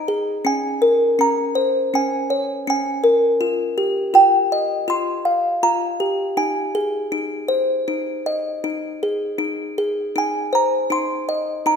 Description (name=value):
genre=children's music, lullaby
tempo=81 BPM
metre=4/4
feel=straight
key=Ab major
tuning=A4 = 439 Hz
part: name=music box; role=solo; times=0.0-11.8 s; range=Db4 to C6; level=-18 LUFS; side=equal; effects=none
room=moderate scoring stage reverb, RT60 1.5 s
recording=recorded in a church or concert hall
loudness=-18 LUFS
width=side -6 dB against mid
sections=0.0-9.4 A section; 9.4-11.8 A section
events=none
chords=0.5 Bbmadd9; 3.4 Ebadd9; 6.4 Ab